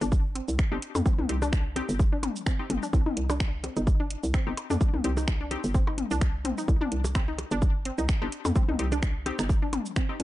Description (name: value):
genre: minimal techno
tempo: 128 BPM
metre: 4/4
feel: swing 55% on 16ths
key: C minor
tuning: A4 = 440 Hz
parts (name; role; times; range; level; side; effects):
- resonant blip pluck; riff; 0.0-10.1 s; C4 to Eb4; -35 LUFS; equal; chorus, sidechain pumping, ping-pong delay
- hollow knocking FM bass; bass; 0.0-10.2 s; G1 to F2; -30 LUFS; equal; sidechain pumping
- booming analog drum machine; drums; 0.0-10.2 s; cabasa, finger snaps, hi-hat; -37 LUFS; right 1 dB; none
- electronic kick drum; drums; 0.1-10.1 s; none; -24 LUFS; equal; none
- wavetable chord stab; stabs; 0.7-10.2 s; C4 to G4; -37 LUFS; left 4 dB; ping-pong delay
- electronic toms and percussion blips; percussion; 1.0-10.2 s; none; -32 LUFS; left 3 dB; ping-pong delay
room: digital ambience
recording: dark, warm production, nothing above 10.4 kHz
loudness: -25 LUFS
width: side -16 dB against mid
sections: 0.0-10.2 A section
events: none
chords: 0.0 Cm